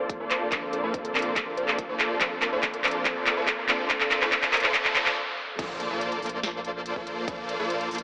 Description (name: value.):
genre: future bass.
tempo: 142 BPM.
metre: 4/4.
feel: half-time.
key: Bb major.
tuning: A4 = 436 Hz.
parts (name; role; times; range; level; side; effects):
glassy digital keys; accompaniment; 0.0-5.6 s; F3 to A4; -41 LUFS; equal; chorus, sidechain pumping, digital delay.
shimmering ambient pad; sustained chords; 0.0-5.1 s; C3 to A4; -46 LUFS; equal; none.
soft round pluck; arpeggios; 0.0-5.1 s; A4 to C5; -37 LUFS; equal; chorus, sidechain pumping, digital delay.
supersaw chords; riff; 0.0-8.0 s; Bb3 to D5; -32 LUFS; equal; sidechain pumping, low-pass filter, digital delay.
riser, noise sweep and impact; sound effects; 1.9-7.3 s; none; -39 LUFS; equal; none.
electronic kick drum; drums; 0.1-7.4 s; none; -40 LUFS; equal; none.
trap drum kit; drums; 0.1-8.0 s; crash cymbal, handclaps, hi-hat, snare drum; -28 LUFS; equal; overdrive.
saturated sub bass; bass; 5.6-8.0 s; Bb1; -48 LUFS; equal; sidechain pumping.
room: moderate lush hall reverb, RT60 1.8 s.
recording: high-pass filter, AM radio sound.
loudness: -26 LUFS.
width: mono.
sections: 0.0-5.6 A section; 5.6-8.0 B section.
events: build-up 0.0-5.6; drum fill 0.0-5.2; filter sweep on supersaw synth 0.0-5.6; filter sweep on synth arpeggio sound 0.0-5.6; filter sweep 0.0-5.6; stop 5.2-5.6; drop 5.6-8.0; impact 5.6-7.3.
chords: 0.0 Bbmaj9.